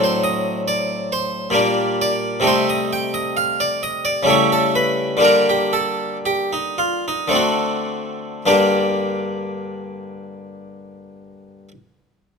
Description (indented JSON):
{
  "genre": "classical, baroque-style suite movement for harpsichord",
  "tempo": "50-68 BPM",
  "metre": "3/4",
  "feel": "rubato",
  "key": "G minor",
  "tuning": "A4 = 440 Hz",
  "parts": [
    { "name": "harpsichord", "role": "solo", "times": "0.0-11.7 s", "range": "G2 to G5", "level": "-17 LUFS", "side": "equal", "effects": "none" }
  ],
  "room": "light reverb",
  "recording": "close, detailed microphones",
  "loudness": "-17 LUFS",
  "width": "side -5 dB against mid",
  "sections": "0.0-8.5 A section; 8.5-11.9 B section",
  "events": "slowing down 1.1-8.5",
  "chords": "0.0 D7/A; 1.5 Gm/Bb; 2.4 Am7b5/C; 4.3 A7/C#; 5.2 Gm/D; 7.3 D7; 8.5 Gm"
}